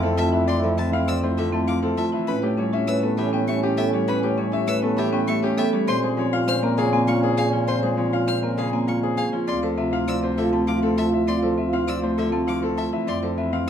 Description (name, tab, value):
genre	classical, minimalist pattern music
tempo	100 BPM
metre	3/4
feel	straight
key	unclear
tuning	A4 = 440 Hz
part	bright concert grand piano	melody	0.0-13.7 s	G4 to A5	-27 LUFS	left 6 dB	none
part	warm French horn	second line	0.0-13.6 s	C#4 to F4	-30 LUFS	right 5 dB	none
part	Celtic harp	accompaniment	0.0-13.7 s	C3 to C#4	-26 LUFS	left 1 dB	none
part	marimba with medium mallets	arpeggios	0.0-13.7 s	C4 to C#5	-26 LUFS	right 3 dB	none
part	warm bass clarinet	bass	0.0-13.7 s	D2 to Bb2	-27 LUFS	left 1 dB	none
part	clear violin	arpeggios	0.2-13.7 s	E5 to F6	-32 LUFS	left 2 dB	none
room	moderate large studio reverb, RT60 0.8 s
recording	minimal, uncompressed stereo recording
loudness	-20 LUFS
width	side -8 dB against mid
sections	0.0-13.7 A section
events	none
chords	0.0 Fmaj7; 2.3 A7; 5.9 Bbm7; 9.5 Dm7; 13.1 Fmaj7